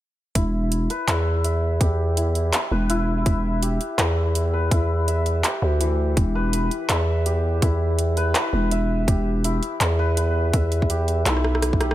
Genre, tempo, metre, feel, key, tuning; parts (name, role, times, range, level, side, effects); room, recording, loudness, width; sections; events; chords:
half-time drum and bass; 165 BPM; 4/4; swing 58% on 16ths, half-time; E minor; A4 = 440 Hz
santur; arpeggios; 0.4-11.9 s; E3 to E5; -27 LUFS; left 1 dB; vintage 12-bit sampler grit, low-pass filter, tape echo
growling 808-style bass; bass; 0.4-11.9 s; E1 to E2; -21 LUFS; equal
drum and bass drum kit; drums; 0.4-11.9 s; handclaps, hi-hat, rim click; -25 LUFS; equal; overdrive, studio ambience
electronic kick drum; drums; 0.4-11.8 s; -20 LUFS; equal; overdrive, studio ambience
little or no reverb; -19 LUFS; side -14 dB against mid
0.4-11.9 A section
drum fill 11.3-11.9
0.4 E5